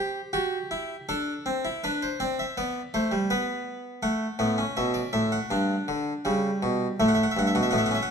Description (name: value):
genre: classical, baroque-style 3-part fugue for harpsichord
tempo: 81 BPM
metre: 4/4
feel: straight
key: G major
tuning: A4 = 440 Hz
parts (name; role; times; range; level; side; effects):
- harpsichord; solo; 0.0-8.1 s; G2 to F#5; -24 LUFS; equal; none
room: wet stone room reverb, RT60 1.3 s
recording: dark, warm production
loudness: -24 LUFS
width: side -6 dB against mid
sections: 0.0-8.1 A section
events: none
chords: 0.0 C; 1.1 D5; 2.6 G; 4.0 D/A; 5.5 G; 7.0 A7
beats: 0.34 | 1.09 1.84 2.57 3.30 | 4.03 4.77 5.52 6.26 | 7.00 7.74